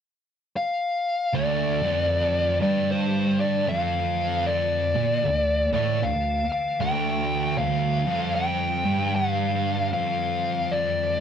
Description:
metal; 77 BPM; 4/4; swing 62% on 8ths; D minor; A4 = 440 Hz
fuzz lead guitar; melody; 0.6-11.2 s; C5 to G5; -24 LUFS; left 2 dB; distortion
tonewheel organ; sustained chords; 1.3-11.2 s; D3 to A3; -38 LUFS; equal; slow rotary speaker, chorus vibrato
thick fuzz guitar; riff; 1.3-11.2 s; D2 to Bb2; -30 LUFS; left 4 dB; distortion
thick fuzz guitar; riff; 1.3-11.2 s; D2 to Bb2; -27 LUFS; right 6 dB; distortion
wet studio reverb, RT60 0.5 s; rough rehearsal-room recording; -22 LUFS; side -8 dB against mid
0.0-1.3 A section; 1.3-11.2 B section
0.0 N.C.; 1.3 Dm

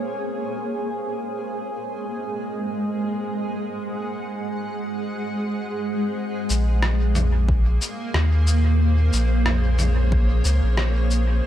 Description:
ambient dub; 91 BPM; 4/4; swing 54% on 16ths; Bb minor; A4 = 439 Hz
granular cloud pad; sustained chords; 0.0-11.5 s; Ab3 to Gb5; -26 LUFS; right 1 dB; built-in reverb
bubbling stepped-filter texture; texture; 0.0-6.2 s; Ab4 to Ab5; -35 LUFS; equal; chorus, built-in reverb
warm sub bass; bass; 6.5-11.4 s; Bb1 to Eb2; -18 LUFS; equal
lo-fi sampler-style drum kit; drums; 6.5-11.3 s; rim click, shaker, toms; -27 LUFS; left 1 dB; overdrive, low-pass filter on perc, low-pass filter on snare, low-pass filter on toms, low-pass filter on room, dub echo
electronic kick drum; drums; 7.5-10.3 s; -23 LUFS; equal; overdrive
light reverb; -20 LUFS; side -12 dB against mid
0.0-6.2 A section; 6.2-11.5 B section
filter sweep on ambient pad 0.0-6.2
0.0 Bbm9; 0.9 Ab7; 6.2 Bbm9

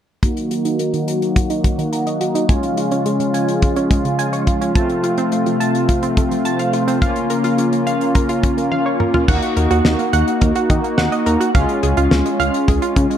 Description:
synth-pop; 106 BPM; 4/4; straight; A4 = 440 Hz
analog synth brass; accompaniment; 0.2-13.2 s; Ab3 to Gb4; -18 LUFS; equal; chorus, low-pass filter
warm analog pad; sustained chords; 0.2-9.3 s; C3 to Gb4; -23 LUFS; left 1 dB; chorus, low-pass filter
analog pluck; arpeggios; 0.2-13.2 s; Db3 to Bb5; -23 LUFS; right 3 dB; chorus, low-pass filter, analog delay
damped 70s drum kit; drums; 0.2-13.2 s; crash cymbal, hi-hat, kick drum, snare drum, toms; -19 LUFS; equal
chorused synth bass; bass; 9.3-13.1 s; Db2 to Eb3; -18 LUFS; equal
moderate digital room reverb, RT60 1.2 s, small room ambience; dark, warm production; -15 LUFS; side -9 dB against mid
0.2-9.3 A section; 9.3-13.2 B section
filter sweep 0.2-9.3; drum fill 8.7-9.3
0.2 Ebm; 2.5 Db; 4.8 F; 7.0 Bbm; 9.3 Ebm; 11.5 Db

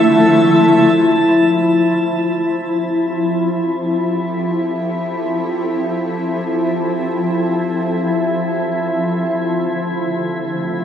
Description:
ambient; free time; F major; A4 = 441 Hz
shimmering ambient pad; sustained chords; 0.0-10.8 s; D3 to E5; -22 LUFS; equal; chorus, built-in reverb, shimmer reverb
vibraphone with soft mallets; arpeggios; 0.0-3.2 s; E4; -16 LUFS; left 2 dB; tape echo, shimmer reverb
organ-like drone; drone; 0.0-10.8 s; F3 to E4; -18 LUFS; equal; ensemble chorus, built-in reverb
drifting glass-harmonics texture; texture; 0.0-1.0 s; A5; -22 LUFS; right 1 dB; chorus, built-in reverb, shimmer reverb
wet lush hall reverb, RT60 2.9 s; -14 LUFS; side -9 dB against mid
1.0-10.8 A section
fade-in on ambient pad 1.0-10.8
0.0 Dmadd9; 1.0 Fmaj7; 8.6 Dm9

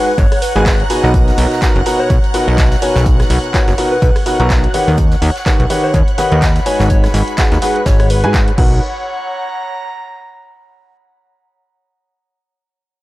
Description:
piano house; 125 BPM; 4/4; swing 57% on 16ths; B major; A4 = 439 Hz
soft struck synth lead; melody; 0.0-8.5 s; F#4 to D#5; -22 LUFS; left 2 dB; chorus, tape echo
string machine, violins; sustained chords; 0.0-8.6 s; F#5 to F#6; -26 LUFS; equal; ensemble chorus, sidechain pumping
clear upright piano; riff; 0.0-8.8 s; B2 to A#5; -18 LUFS; equal; sidechain pumping, tape echo
airy breathy pad; texture; 0.0-10.7 s; C#5 to B5; -24 LUFS; equal; chorus, sidechain pumping
plucky analog bass; bass; 0.2-8.8 s; F#1 to G#2; -14 LUFS; equal; sidechain pumping
electronic kick drum; drums; 0.2-8.7 s; -14 LUFS; equal
jazz brush drum kit; drums; 0.2-8.6 s; hi-hat, snare drum; -31 LUFS; right 2 dB; sidechain pumping on hats, high-pass filter on hats, high-pass filter on snare, high-pass filter on room
punchy analog drum machine; drums; 0.2-8.7 s; crash cymbal, handclaps, hi-hat, rim click; -23 LUFS; equal
little or no reverb; dry, gritty hardware recording; -11 LUFS; side -17 dB against mid
0.0-8.8 A section; 8.8-10.7 B section
drop 0.0-8.8
0.0 G#m7; 1.1 Bmaj7; 4.7 D#7alt; 6.7 G#m7; 8.6 Bmaj7; 8.8 F#/C#

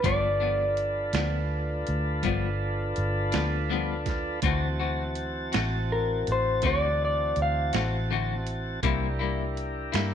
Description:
slow blues; 55 BPM (dotted quarters); 12/8; straight; G mixolydian; A4 = 440 Hz
electric guitar through a small old amp; melody; 0.0-7.7 s; Bb4 to F5; -27 LUFS; left 1 dB
clean electric guitar; accompaniment; 0.0-10.1 s; G2 to F#4; -31 LUFS; left 12 dB; tremolo
tonewheel organ; sustained chords; 0.0-10.1 s; E3 to A5; -32 LUFS; equal; slow rotary speaker
vintage muted fingered electric bass; bass; 0.0-10.1 s; G1 to G2; -29 LUFS; equal
boom bap sampler-style drum kit; drums; 0.0-10.1 s; hi-hat, kick drum, snare drum; -31 LUFS; right 4 dB
light reverb, digital ambience; 1960s-style stereo; -25 LUFS; side -9 dB against mid
0.0-10.1 A section
0.0 G7; 4.4 D7; 8.8 C7

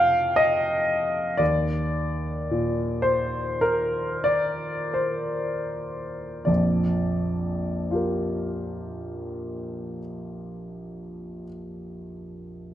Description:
classical, impressionist solo piano; 38-64 BPM; 4/4; rubato; Bb major; A4 = 441 Hz
clear grand piano; solo; 0.0-12.7 s; Bb1 to A5; -24 LUFS; equal
wet recital hall reverb, RT60 1.7 s; -23 LUFS; side -12 dB against mid
0.0-6.5 A section; 6.5-12.3 B section
slowing down 0.0-6.5
0.0 F5; 1.4 Eb5; 6.5 Bb6

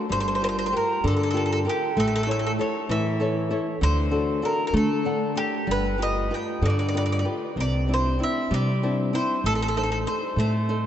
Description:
italian folk, Italian serenade; 64 BPM (dotted quarters); 6/8; rubato; G minor; A4 = 436 Hz
flamenco guitar; accompaniment; 0.0-10.9 s; C3 to F#5; -26 LUFS; left 1 dB
bowl-back mandolin; melody; 0.1-10.9 s; G4 to G5; -27 LUFS; right 1 dB
upright bass; bass; 0.1-10.9 s; G1 to D3; -26 LUFS; right 1 dB
wet cathedral reverb, RT60 6.0 s; in a vast, echoing space, nothing above 8.0 kHz; -22 LUFS; side -10 dB against mid
0.0-10.9 A section
0.1 Gm7; 2.0 A; 3.8 D; 5.7 G7; 7.6 Cadd9; 9.4 Adim

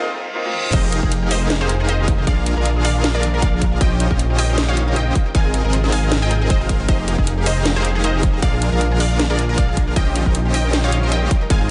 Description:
future bass; 156 BPM; 4/4; swing 55% on 16ths, half-time; F minor; A4 = 444 Hz
clear concert grand piano; accompaniment; 0.0-0.7 s; Bb3 to F4; -27 LUFS; equal; sidechain pumping, delay
reverse cymbal; sound effects; 0.2-0.7 s; -30 LUFS; equal
trap drum kit; drums; 0.5-11.6 s; crash cymbal, hi-hat, snare drum, toms; -27 LUFS; equal; studio reverb
unison pluck; melody; 0.7-11.7 s; Ab4 to Ab5; -28 LUFS; equal; sidechain pumping, delay
shimmering ambient pad; sustained chords; 1.9-11.7 s; C3 to C5; -34 LUFS; equal
unison pluck; arpeggios; 0.7-11.7 s; D4 to C5; -33 LUFS; equal
dense compressed supersaw; riff; 0.7-11.7 s; C4 to F5; -27 LUFS; equal; sidechain pumping, delay
detuned saw bass; bass; 0.7-11.7 s; F1 to Bb1; -22 LUFS; equal; chorus, sidechain pumping, high-pass filter
electronic kick drum; drums; 0.7-11.6 s; -20 LUFS; equal; studio reverb
light reverb; high-pass filter, nothing above 10.3 kHz; -18 LUFS; mono
0.7-11.7 A section
break 0.0-0.7; reverse cymbal 0.2-0.7; drum fill 0.4; drop 0.7-11.7
0.0 Ab69 (rootless); 0.7 Fm11; 2.3 Bb7; 3.8 Eb13/Bb; 5.2 Ab69; 6.9 Fm11; 8.4 Bb7; 10.0 Eb13/Bb

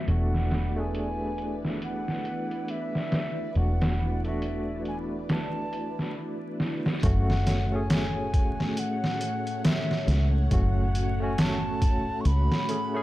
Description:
trip hop; 69 BPM; 4/4; swing 60% on 16ths; F# minor; A4 = 440 Hz
baroque flute; melody; 0.0-13.0 s; E5 to C#6; -35 LUFS; equal; vintage 12-bit sampler grit
barky tine electric piano; accompaniment; 0.0-13.0 s; A3 to G#4; -33 LUFS; equal; tremolo
string machine, cellos; sustained chords; 0.0-13.0 s; A3 to F#5; -36 LUFS; equal; phaser, ensemble chorus
deep dub fingered electric bass; bass; 0.0-12.5 s; E1 to C#2; -26 LUFS; equal
bowed-like drone; texture; 0.1-13.0 s; A3 to B3; -46 LUFS; equal
trip hop sampler-style drum kit; drums; 0.1-12.9 s; hi-hat, kick drum, snare drum; -28 LUFS; equal; overdrive, low-pass filter on hats, low-pass filter on snare, low-pass filter on kick, low-pass filter on room
digital ambience; dark, warm production, vinyl crackle, low-pass filter; -25 LUFS; side -16 dB against mid
0.0-7.0 A section; 7.0-13.0 B section
filter sweep 0.0-7.0; drum fill 6.6-7.0
0.1 E7sus4; 7.0 F#m

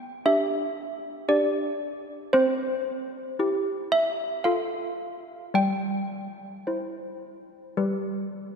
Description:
classical, tune for handbells; 54-58 BPM; 3/4; straight; C major; A4 = 440 Hz
malleted handbells; solo; 0.0-8.6 s; G3 to G5; -25 LUFS; equal
wet church reverb, RT60 3.4 s; minimal, uncompressed stereo recording; -24 LUFS; side -6 dB against mid
0.0-8.6 A section
0.0 G5; 2.3 C; 4.5 F; 5.6 C/G; 7.8 G

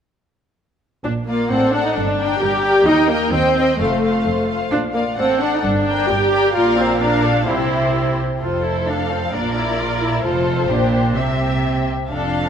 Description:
quick classical-period movement for symphony orchestra; 130 BPM; 2/4; straight; F major from 6.5 s; A4 = 442 Hz
rich studio viola section; accompaniment; 1.0-12.5 s; A3 to G4; -18 LUFS; equal
clear studio cello section; bass; 1.0-12.5 s; Eb2 to C3; -25 LUFS; right 3 dB
clear studio double bass section; bass; 1.1-12.5 s; F1 to Eb2; -25 LUFS; right 3 dB
rich studio violin section; melody; 1.3-12.5 s; C5 to G5; -24 LUFS; left 4 dB
warm studio violin section; second line; 1.3-12.5 s; F4 to Eb5; -24 LUFS; left 3 dB
wet concert hall reverb, RT60 2.2 s; -16 LUFS; side -8 dB against mid
1.1-8.4 A section; 8.4-12.5 B section
1.1 Bb; 1.5 D7/A; 2.0 Gm; 2.9 Eb; 3.3 Cm/Eb; 3.8 F; 4.7 Bb; 5.2 D7/A; 5.6 Gm; 6.5 Bb; 7.5 C; 8.4 F; 9.3 Bb; 10.2 F; 10.7 Gm/Bb; 11.2 C

